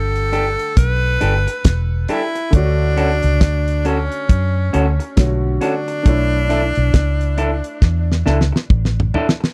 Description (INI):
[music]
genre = lovers rock reggae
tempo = 68 BPM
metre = 4/4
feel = swing 60% on 16ths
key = D major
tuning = A4 = 443 Hz
[part]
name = bright tenor saxophone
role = melody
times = 0.0-8.2 s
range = C#4 to B4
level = -25 LUFS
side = equal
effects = tape echo
[part]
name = clear baby grand piano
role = accompaniment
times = 0.0-9.5 s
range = D3 to F#5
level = -29 LUFS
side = equal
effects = slapback echo
[part]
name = vintage muted fingered electric bass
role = bass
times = 0.0-9.1 s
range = E1 to F#2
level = -20 LUFS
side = equal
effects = none
[part]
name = damped 70s drum kit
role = drums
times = 0.2-9.5 s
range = hi-hat, kick drum, snare drum, toms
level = -16 LUFS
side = equal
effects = none
[part]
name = electric guitar through a small old amp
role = stabs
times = 0.3-9.4 s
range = C#4 to A4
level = -23 LUFS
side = equal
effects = none
[sound]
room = little or no reverb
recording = dry, close 1970s-style studio recording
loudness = -17 LUFS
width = mono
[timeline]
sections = 0.0-9.5 A section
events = drum fill 7.8-9.5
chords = 0.0 Em11; 2.5 Dmaj7; 6.1 Bm11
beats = 0.77 1.65 | 2.53 3.41 4.29 5.17 | 6.06 6.94 7.82 8.70